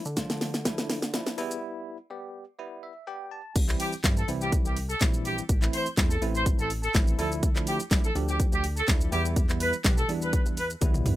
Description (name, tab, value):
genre	dance-pop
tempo	124 BPM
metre	4/4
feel	straight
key	unclear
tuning	A4 = 440 Hz
part	barky tine electric piano	accompaniment	0.0-11.2 s	E3 to A5	-34 LUFS	equal	fast stereo tremolo, sidechain pumping
part	chorused synth bass	bass	0.1-11.2 s	A1 to D3	-32 LUFS	equal	sidechain pumping
part	pop drum kit	drums	0.1-11.2 s	crash cymbal, handclaps, hi-hat, kick drum, shaker, snare drum, toms	-25 LUFS	equal	none
part	clear horn section	melody	3.8-10.7 s	G4 to C5	-30 LUFS	equal	sidechain pumping
room	little or no reverb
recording	rough home demo mix, high-pass filter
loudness	-24 LUFS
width	side -15 dB against mid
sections	0.0-3.6 A section; 3.6-11.2 B section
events	build-up 0.0-3.6; drum fill 0.0-1.6, 10.8-11.2; filter sweep 0.0-3.6; break 1.6-3.6; tine electric piano fill 2.6-3.6; drop 3.6-11.2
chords	0.0 Dmadd9; 1.4 Em; 3.6 C; 5.5 Am; 7.2 Dmadd9; 9.1 Em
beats	0.17 0.65 1.14 | 1.62 2.11 2.59 3.07 | 3.56 4.04 4.53 5.01 | 5.49 5.98 6.46 6.94 | 7.43 7.91 8.40 8.88 | 9.36 9.85 10.33 10.81